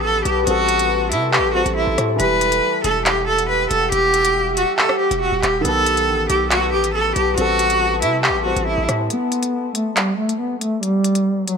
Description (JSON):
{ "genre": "hip hop, drill", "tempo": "139 BPM", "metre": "4/4", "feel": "half-time", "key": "E harmonic minor", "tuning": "A4 = 439 Hz", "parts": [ { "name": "clear cello", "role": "melody", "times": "0.0-11.6 s", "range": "F#3 to B4", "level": "-18 LUFS", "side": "equal", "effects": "low-pass filter, tape echo" }, { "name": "felt-muted upright piano", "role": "accompaniment", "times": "0.0-9.1 s", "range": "D#3 to C5", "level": "-27 LUFS", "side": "equal", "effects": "low-pass filter" }, { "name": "deep dark ambient pad", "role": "sustained chords", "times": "0.0-9.1 s", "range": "G4 to E6", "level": "-24 LUFS", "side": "left 1 dB", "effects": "chorus, built-in reverb" }, { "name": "distorted 808-style bass", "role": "bass", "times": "0.0-9.1 s", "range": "D#1 to C3", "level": "-25 LUFS", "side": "equal", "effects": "distortion" }, { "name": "drill drum kit", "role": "drums", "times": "0.3-11.6 s", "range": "handclaps, hi-hat, rim click", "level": "-21 LUFS", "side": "equal", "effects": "none" } ], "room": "light reverb, digital ambience", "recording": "none", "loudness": "-16 LUFS", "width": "side -6 dB against mid", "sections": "0.0-9.1 A section; 9.1-11.6 B section", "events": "break 9.1-11.6; filter sweep 9.1-11.6", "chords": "0.5 Am7; 2.2 Emadd9; 5.6 B7; 7.4 Am7; 9.1 N.C.", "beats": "0.04 | 0.47 0.90 1.33 1.76 | 2.20 2.63 3.06 3.49 | 3.92 4.35 4.79 5.22 | 5.65 6.08 6.51 6.94 | 7.38 7.81 8.24 8.67 | 9.10 9.53 9.97 10.40 | 10.83 11.26" }